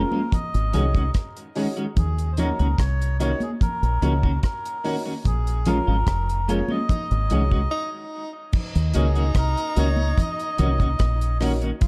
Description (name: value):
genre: roots reggae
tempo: 73 BPM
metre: 4/4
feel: straight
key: Eb dorian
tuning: A4 = 443 Hz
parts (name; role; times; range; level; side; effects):
- melodica; melody; 0.0-11.4 s; Ab4 to Eb5; -32 LUFS; equal; dub echo
- warm upright piano; stabs; 0.0-11.7 s; Db4 to Db5; -34 LUFS; equal; none
- deep dub fingered electric bass; bass; 0.0-11.7 s; F1 to Eb2; -24 LUFS; equal; none
- clean electric guitar; accompaniment; 0.1-11.7 s; Eb3 to Gb4; -31 LUFS; equal; analog chorus
- congas; percussion; 0.1-11.9 s; none; -32 LUFS; equal; none
- deep reggae drum kit; drums; 0.3-11.9 s; crash cymbal, hi-hat, kick drum, rim click; -26 LUFS; equal; none
- bright tenor saxophone; second line; 6.9-11.9 s; Eb4 to F4; -34 LUFS; equal; dub echo
room: small room reverb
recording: dark, warm production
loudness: -23 LUFS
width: mono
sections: 0.0-8.5 A section; 8.5-11.9 B section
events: band accent 5.3-8.5; break 7.7-8.5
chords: 0.3 Ab7sus4; 2.0 Ebm7; 5.3 Bbm7; 6.9 Ab7sus4; 8.5 Ebm7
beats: 0.32 1.15 | 1.97 2.79 3.61 4.43 | 5.25 6.08 6.90 7.72 | 8.54 9.36 10.18 11.00 | 11.82